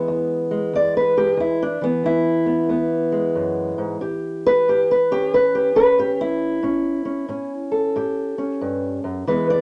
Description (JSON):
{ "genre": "acoustic country blues, solo or duo", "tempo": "91 BPM", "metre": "4/4", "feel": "swing 64% on 8ths", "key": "unclear", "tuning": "A4 = 440 Hz", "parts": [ { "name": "fingerpicked old ladder-braced acoustic guitar", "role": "solo", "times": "0.0-9.6 s", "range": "E2 to D5", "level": "-20 LUFS", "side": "equal", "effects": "none" } ], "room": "moderate studio reverb, RT60 0.6 s", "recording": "nothing above 10.4 kHz", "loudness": "-20 LUFS", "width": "mono", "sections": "0.0-9.6 A section", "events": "steel-string acoustic guitar solo 0.0-9.6", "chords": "0.0 E; 4.0 A7" }